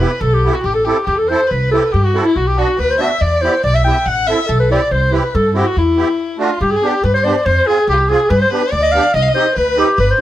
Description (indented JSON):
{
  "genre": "klezmer",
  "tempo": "141 BPM",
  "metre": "2/4",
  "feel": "straight",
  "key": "E minor, G phrygian dominant from 6.6 s",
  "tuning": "A4 = 441 Hz",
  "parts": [
    { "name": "mellow clarinet", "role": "melody", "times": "0.0-10.2 s", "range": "E4 to G5", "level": "-15 LUFS", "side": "equal", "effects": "plate reverb" },
    { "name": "dark violin", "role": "second line", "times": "0.0-10.2 s", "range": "E4 to F#5", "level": "-21 LUFS", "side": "left 4 dB", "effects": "none" },
    { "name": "musette accordion", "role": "accompaniment", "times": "0.0-10.2 s", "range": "A3 to A4", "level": "-20 LUFS", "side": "right 4 dB", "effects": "none" },
    { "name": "upright bass", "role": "bass", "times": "0.0-10.1 s", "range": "G1 to G2", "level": "-17 LUFS", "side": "equal", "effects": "none" }
  ],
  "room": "moderate studio reverb, RT60 0.6 s",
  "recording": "none",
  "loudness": "-12 LUFS",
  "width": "side -13 dB against mid",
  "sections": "0.0-6.6 A section; 6.6-10.2 B section",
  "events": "break 6.2-6.6",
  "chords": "0.0 Em; 0.6 Am; 1.5 C; 2.4 Bm; 3.2 Em; 4.1 Am; 4.9 C; 5.8 Em; 6.2 D; 6.6 G; 7.5 Fm; 8.3 G; 9.1 Cm",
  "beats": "0.22 | 0.65 1.08 | 1.51 1.94 | 2.37 2.79 | 3.22 3.65 | 4.07 4.50 | 4.92 5.35 | 5.77 6.19 | 6.62 7.04 | 7.46 7.88 | 8.30 8.73 | 9.15 9.57 | 9.99"
}